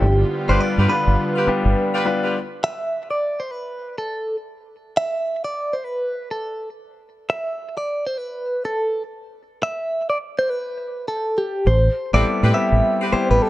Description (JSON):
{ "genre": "R&B", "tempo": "103 BPM", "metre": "4/4", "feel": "swing 62% on 16ths", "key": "A minor", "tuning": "A4 = 440 Hz", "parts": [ { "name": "direct-recorded clean electric guitar", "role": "melody", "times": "0.0-13.5 s", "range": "G4 to E5", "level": "-22 LUFS", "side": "right 1 dB", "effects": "phaser" }, { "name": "clear concert grand piano", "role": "accompaniment", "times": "0.0-2.4, 12.1-13.5 s", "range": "G3 to B4", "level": "-22 LUFS", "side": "left 3 dB", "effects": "none" }, { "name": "warm analog pad", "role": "sustained chords", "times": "0.0-2.3 s", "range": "D3 to F4", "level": "-27 LUFS", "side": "right 1 dB", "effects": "wide subtle chorus" }, { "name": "deep dub fingered electric bass", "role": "bass", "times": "0.0-1.7, 11.7-13.4 s", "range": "G1 to A2", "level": "-17 LUFS", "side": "equal", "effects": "none" }, { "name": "clear horn section", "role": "stabs", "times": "0.5-2.4, 12.1-13.1 s", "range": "C4 to B4", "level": "-27 LUFS", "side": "equal", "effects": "none" } ], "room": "light reverb, small room ambience", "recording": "none", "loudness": "-19 LUFS", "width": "side -16 dB against mid", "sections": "0.0-2.3 A section; 2.3-11.7 B section; 11.7-13.5 A section", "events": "none", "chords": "0.0 G7; 2.3 N.C.; 11.7 Am9" }